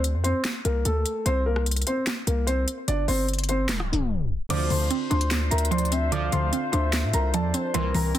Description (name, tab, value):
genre	hip hop, trap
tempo	148 BPM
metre	4/4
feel	half-time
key	D minor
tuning	A4 = 441 Hz
part	hard-hitting 808-style bass	bass	0.0-8.1 s	F1 to A2	-25 LUFS	equal	none
part	trap drum kit	drums	0.0-8.2 s	crash cymbal, handclaps, hi-hat, rim click, snare drum	-29 LUFS	left 1 dB	none
part	dark baby grand piano	melody	0.2-8.1 s	A3 to D6	-28 LUFS	left 1 dB	ping-pong delay
part	gliding portamento lead	second line	4.5-8.1 s	Bb4 to F5	-33 LUFS	left 3 dB	chorus, ping-pong delay
part	mallet-like synth pluck	accompaniment	4.5-8.2 s	D3 to D4	-28 LUFS	right 3 dB	chorus
part	mellow woodwind section	sustained chords	4.5-8.2 s	C3 to C5	-35 LUFS	left 1 dB	none
part	clear brass ensemble	stabs	4.5-8.1 s	C2 to F3	-34 LUFS	right 5 dB	none
room	studio reverb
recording	dense, heavily limited modern master, tape stop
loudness	-22 LUFS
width	side -12 dB against mid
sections	0.0-4.5 A section; 4.5-8.2 B section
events	tape stop 3.7-4.5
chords	0.0 Dm7; 1.3 Bbsus2/C; 2.9 N.C.; 4.5 Dm7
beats	0.04 0.45 0.85 | 1.26 1.66 2.07 2.47 | 2.88 3.28 3.69 4.09 | 4.50 4.91 5.31 5.72 | 6.12 6.53 6.93 7.34 | 7.74 8.15